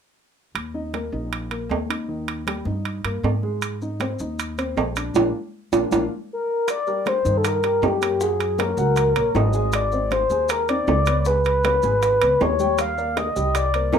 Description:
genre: Afro-Cuban jazz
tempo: 157 BPM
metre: 4/4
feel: straight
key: Eb major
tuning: A4 = 440 Hz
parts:
  - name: upright bass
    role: bass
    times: 0.5-14.0 s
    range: Ab1 to Ab2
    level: -26 LUFS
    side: equal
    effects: none
  - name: congas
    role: percussion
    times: 0.6-14.0 s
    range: none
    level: -35 LUFS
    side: left 4 dB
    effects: none
  - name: timbales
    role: percussion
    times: 0.6-14.0 s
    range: none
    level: -24 LUFS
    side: right 6 dB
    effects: none
  - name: warm baby grand piano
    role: accompaniment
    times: 0.7-14.0 s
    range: Eb3 to Ab5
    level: -29 LUFS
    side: equal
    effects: none
  - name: maracas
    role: percussion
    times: 3.6-14.0 s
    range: none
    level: -40 LUFS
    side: left 3 dB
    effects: none
  - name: reedy FM lead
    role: melody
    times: 6.3-14.0 s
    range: G4 to F5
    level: -20 LUFS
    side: left 2 dB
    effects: chorus
  - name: bongos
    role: percussion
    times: 6.7-14.0 s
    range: none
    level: -32 LUFS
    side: left 7 dB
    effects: none
room: wet small room reverb, RT60 0.5 s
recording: rough home demo mix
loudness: -20 LUFS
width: side -7 dB against mid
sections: 0.6-6.7 A section; 6.7-14.0 B section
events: band accent 5.2-6.7; drum fill 5.5-6.7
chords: 0.6 Eb5; 2.1 Eb; 3.6 Abadd9; 5.2 Bb; 6.7 Eb; 8.2 Gbadd9; 9.7 Ab; 11.3 Dbsus2; 12.8 Ebmaj9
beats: | 0.55 0.94 1.32 1.70 | 2.09 2.47 2.85 3.24 | 3.62 4.00 4.38 4.77 | 5.15 5.53 5.92 6.30 | 6.68 7.06 7.44 7.83 | 8.21 8.59 8.97 9.35 | 9.73 10.11 10.49 10.88 | 11.26 11.64 12.02 12.40 | 12.79 13.17 13.55 13.93

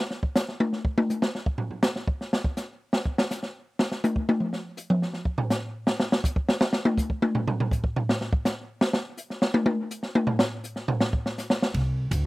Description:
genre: jazz, small-group swing and bop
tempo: 163 BPM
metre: 4/4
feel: swing 64% on 8ths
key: unclear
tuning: A4 = 440 Hz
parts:
  - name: open jazz drum kit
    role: drums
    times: 0.1-12.2 s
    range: hi-hat, kick drum, ride cymbal, snare drum, toms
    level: -24 LUFS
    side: equal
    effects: none
  - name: upright bass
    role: bass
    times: 11.7-12.2 s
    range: C2 to D2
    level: -24 LUFS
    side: equal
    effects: none
room: little or no reverb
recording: recorded outdoors, with no room sound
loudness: -24 LUFS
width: side -19 dB against mid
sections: 0.0-11.7 A section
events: drum solo 0.0-11.7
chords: none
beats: 0.36 0.73 1.09 | 1.46 1.83 2.20 2.57 | 2.93 3.30 3.67 4.04 | 4.40 4.77 5.14 5.50 | 5.87 6.24 6.61 6.97 | 7.34 7.71 8.07 8.44 | 8.81 9.18 9.54 9.91 | 10.28 10.64 11.01 11.38 | 11.75 12.12

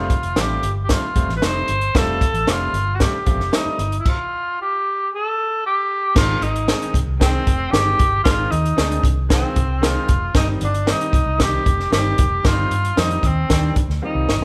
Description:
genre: uptempo 1960s-style soul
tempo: 114 BPM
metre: 4/4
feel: straight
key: unclear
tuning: A4 = 442 Hz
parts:
  - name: breathy tenor saxophone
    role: melody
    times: 0.0-14.4 s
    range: C4 to C5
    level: -24 LUFS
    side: equal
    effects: none
  - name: clear baby grand piano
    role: accompaniment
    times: 0.0-14.3 s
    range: Eb3 to G4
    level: -30 LUFS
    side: equal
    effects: none
  - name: vintage muted fingered electric bass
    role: bass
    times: 0.0-14.4 s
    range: F1 to G2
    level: -25 LUFS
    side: equal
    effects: none
  - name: compact cocktail drum kit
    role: drums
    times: 0.1-14.4 s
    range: crash cymbal, hi-hat, kick drum, snare drum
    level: -21 LUFS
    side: equal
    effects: none
room: light reverb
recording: band playing live in one room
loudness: -19 LUFS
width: mono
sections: 0.0-6.2 A section; 6.2-14.4 B section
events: stop 4.1-6.2; drum fill 14.0-14.4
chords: 0.0 Fadd9; 6.2 Ab; 10.4 Cm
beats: 0.37 0.89 1.42 | 1.95 2.48 3.00 3.53 | 4.05 4.58 5.11 5.63 | 6.16 6.68 7.21 7.73 | 8.26 8.78 9.31 9.83 | 10.35 10.88 11.40 11.93 | 12.45 12.97 13.50 14.02

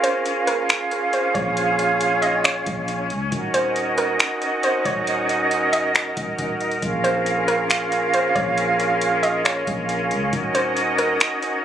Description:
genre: hip hop, atmospheric cloud-rap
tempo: 137 BPM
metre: 4/4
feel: half-time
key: Bb minor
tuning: A4 = 441 Hz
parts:
  - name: hollow square pluck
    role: melody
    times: 0.0-11.6 s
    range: Bb4 to Eb5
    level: -25 LUFS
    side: equal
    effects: chorus, low-pass filter, ping-pong delay
  - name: bright flute section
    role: sustained chords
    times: 0.0-11.6 s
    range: Db4 to F5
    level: -21 LUFS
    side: right 2 dB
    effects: sidechain pumping
  - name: booming analog drum machine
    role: drums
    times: 0.0-11.5 s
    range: finger snaps, hi-hat, kick drum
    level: -24 LUFS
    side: equal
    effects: none
  - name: soft 808-style bass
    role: bass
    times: 1.3-11.2 s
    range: Eb1 to Db2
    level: -31 LUFS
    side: left 2 dB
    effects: none
room: light reverb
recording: recorded on a phone in the room, studio ambience, compression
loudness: -18 LUFS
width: side -9 dB against mid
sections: 0.0-11.6 A section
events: break 0.0-0.7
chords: 0.0 Bbm7; 3.3 Ebm7; 6.8 Bbm7; 10.3 Ebm7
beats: 0.26 0.69 1.13 | 1.57 2.01 2.44 2.88 | 3.32 3.76 4.20 4.63 | 5.07 5.51 5.95 6.39 | 6.82 7.26 7.70 8.14 | 8.58 9.01 9.45 9.89 | 10.33 10.77 11.20 11.64

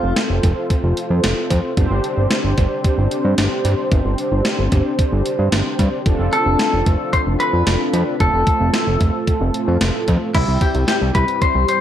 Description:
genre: synth-pop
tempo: 112 BPM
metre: 4/4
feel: straight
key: G mixolydian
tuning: A4 = 440 Hz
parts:
  - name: clean electric guitar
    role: melody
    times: 0.0-0.1, 6.3-11.8 s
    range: E4 to C5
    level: -20 LUFS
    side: left 2 dB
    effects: dub echo
  - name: mellow synth brass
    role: accompaniment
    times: 0.0-11.8 s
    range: G3 to C5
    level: -21 LUFS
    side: right 1 dB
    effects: chorus, dub echo
  - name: fat analog bass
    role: bass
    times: 0.0-11.7 s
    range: F1 to G2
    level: -18 LUFS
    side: equal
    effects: none
  - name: gated 80s digital drum machine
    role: drums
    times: 0.2-11.8 s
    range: crash cymbal, hi-hat, kick drum, snare drum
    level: -20 LUFS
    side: equal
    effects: gated reverb, gated reverb snare, dub echo
room: light reverb, digital ambience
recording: echo-heavy mix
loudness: -15 LUFS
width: side -10 dB against mid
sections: 0.0-10.3 A section; 10.3-11.8 B section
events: none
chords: 0.0 F; 1.8 Gsus4; 6.1 Dm7/F; 8.2 F; 10.3 C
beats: 0.17 0.70 1.24 | 1.77 2.31 2.85 3.38 | 3.92 4.45 4.99 5.52 | 6.06 6.59 7.13 7.67 | 8.20 8.74 9.27 9.81 | 10.35 10.88 11.42

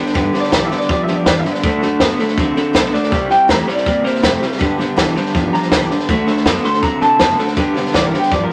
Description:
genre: rockabilly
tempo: 162 BPM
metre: 4/4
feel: straight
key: G major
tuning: A4 = 439 Hz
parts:
  - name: picked steel-string acoustic guitar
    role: accompaniment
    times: 0.0-8.5 s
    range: G2 to A4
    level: -23 LUFS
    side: equal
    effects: none
  - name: electric guitar through a small old amp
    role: riff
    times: 0.0-8.5 s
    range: G2 to C4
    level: -21 LUFS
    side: equal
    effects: tremolo
  - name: compact cocktail drum kit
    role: drums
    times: 0.1-8.5 s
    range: hi-hat, kick drum, snare drum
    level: -20 LUFS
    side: equal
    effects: none
  - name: upright bass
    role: bass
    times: 0.2-8.5 s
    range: F1 to C3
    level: -30 LUFS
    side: equal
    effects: none
  - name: electric guitar through a small old amp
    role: melody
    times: 0.4-8.5 s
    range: G4 to C6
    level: -20 LUFS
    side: equal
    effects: none
room: moderate studio reverb, RT60 0.6 s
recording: none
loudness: -15 LUFS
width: mono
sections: 0.0-7.6 A section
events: none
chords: 0.0 G; 1.6 D; 3.1 C; 4.6 G; 6.1 D; 7.6 G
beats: | 0.15 0.53 0.90 1.27 | 1.64 2.01 2.38 2.75 | 3.12 3.50 3.87 4.24 | 4.61 4.98 5.35 5.72 | 6.09 6.46 6.83 7.20 | 7.58 7.95 8.32

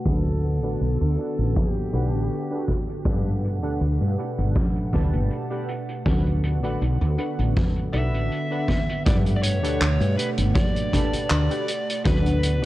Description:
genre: vaporwave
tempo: 80 BPM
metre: 4/4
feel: swing 53% on 16ths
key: unclear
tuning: A4 = 441 Hz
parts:
  - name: biting lead guitar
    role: melody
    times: 0.0-2.6, 7.9-12.7 s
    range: F#4 to E5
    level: -31 LUFS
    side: equal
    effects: overdrive, tape echo
  - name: warbly tape-like pad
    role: sustained chords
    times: 0.0-12.7 s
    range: B2 to F#5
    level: -32 LUFS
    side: right 1 dB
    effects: chorus, built-in reverb, vintage 12-bit sampler grit
  - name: warbly lo-fi synth keys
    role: accompaniment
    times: 0.1-12.7 s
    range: D4 to A5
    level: -30 LUFS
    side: equal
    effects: analog chorus, tape echo
  - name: woody fretless electric bass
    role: bass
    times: 0.1-12.7 s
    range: G1 to G2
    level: -22 LUFS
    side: equal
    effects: tube saturation, ensemble chorus
  - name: kick drum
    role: drums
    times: 0.1-12.2 s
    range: none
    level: -23 LUFS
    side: equal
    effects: none
  - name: street-band drum kit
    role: drums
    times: 0.1-12.6 s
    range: handclaps, hi-hat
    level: -31 LUFS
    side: equal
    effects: low-pass filter on hats, low-pass filter on snare, low-pass filter on room, gated reverb
room: small room reverb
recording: tape saturation, cassette tape, low-pass filter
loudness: -21 LUFS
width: side -16 dB against mid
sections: 0.0-9.1 A section; 9.1-12.7 B section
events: filter sweep 0.0-9.1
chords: 0.1 D6; 3.1 Gmaj9; 6.1 D6; 9.1 Gmaj9; 12.1 D6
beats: | 0.06 0.81 1.56 2.31 | 3.06 3.81 4.56 5.31 | 6.06 6.81 7.56 8.31 | 9.06 9.81 10.56 11.31 | 12.06

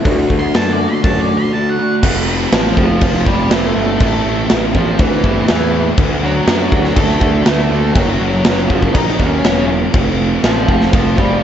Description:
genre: quiet-loud alternative rock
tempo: 122 BPM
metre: 4/4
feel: straight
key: F major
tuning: A4 = 440 Hz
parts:
  - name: electric guitar through a small old amp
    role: arpeggios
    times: 0.0-2.0 s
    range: D3 to F#4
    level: -20 LUFS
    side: left 2 dB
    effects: lush chorus, slapback echo
  - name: thick fuzz guitar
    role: riff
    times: 0.0-11.4 s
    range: A2 to F#4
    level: -18 LUFS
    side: right 1 dB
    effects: distortion, slapback echo
  - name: fuzz picked electric bass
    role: bass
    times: 0.1-11.4 s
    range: E1 to F#2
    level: -18 LUFS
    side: equal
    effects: overdrive
  - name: big rock drum kit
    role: drums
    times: 0.1-11.3 s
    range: crash cymbal, hi-hat, kick drum, snare drum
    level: -15 LUFS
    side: equal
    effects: none
  - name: octave-fuzz lead guitar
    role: melody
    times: 0.4-11.4 s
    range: E3 to C6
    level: -20 LUFS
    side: equal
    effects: distortion, slapback echo
room: moderate scoring stage reverb, RT60 1.9 s, studio reverb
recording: big arena sound, nothing above 7.9 kHz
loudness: -12 LUFS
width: side -9 dB against mid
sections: 0.0-2.0 A section; 2.0-11.4 B section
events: lead electric guitar solo 0.0-2.0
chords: 0.1 D; 2.0 F; 4.0 Am; 6.0 D; 8.0 Gb; 9.9 F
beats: | 0.06 0.56 1.05 1.54 | 2.04 2.53 3.02 3.52 | 4.01 4.50 5.00 5.49 | 5.98 6.48 6.97 7.46 | 7.96 8.45 8.95 9.44 | 9.94 10.44 10.93 11.43

